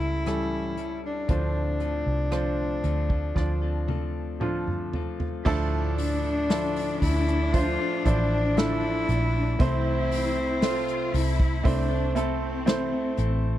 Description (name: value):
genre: pop ballad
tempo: 58 BPM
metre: 4/4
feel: straight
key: D minor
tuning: A4 = 439 Hz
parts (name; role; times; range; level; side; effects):
- rich cello; melody; 0.0-11.7 s; C4 to F4; -29 LUFS; left 1 dB; slapback echo
- clear concert grand piano; accompaniment; 0.0-13.6 s; A2 to E5; -30 LUFS; right 4 dB; none
- direct-recorded clean electric guitar; arpeggios; 0.0-13.6 s; A2 to A4; -36 LUFS; left 15 dB; slapback echo
- vintage muted fingered electric bass; bass; 0.0-13.6 s; A1 to D2; -28 LUFS; equal; none
- unplugged drum kit; drums; 0.0-13.4 s; crash cymbal, hi-hat, kick drum, rim click, snare drum, toms; -27 LUFS; equal; none
- rich studio cello section; second line; 5.5-13.6 s; C4 to F4; -32 LUFS; left 3 dB; none
room: little or no reverb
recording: dry, close 1970s-style studio recording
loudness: -23 LUFS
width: side -13 dB against mid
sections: 0.0-5.5 A section; 5.5-13.6 B section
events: drum fill 3.4-5.5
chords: 0.0 A7; 1.3 Dm7; 5.5 Dmadd9; 9.6 Am/C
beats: 0.27 | 1.29 2.32 3.36 4.41 | 5.46 6.51 7.54 8.57 | 9.60 10.62 11.65 12.67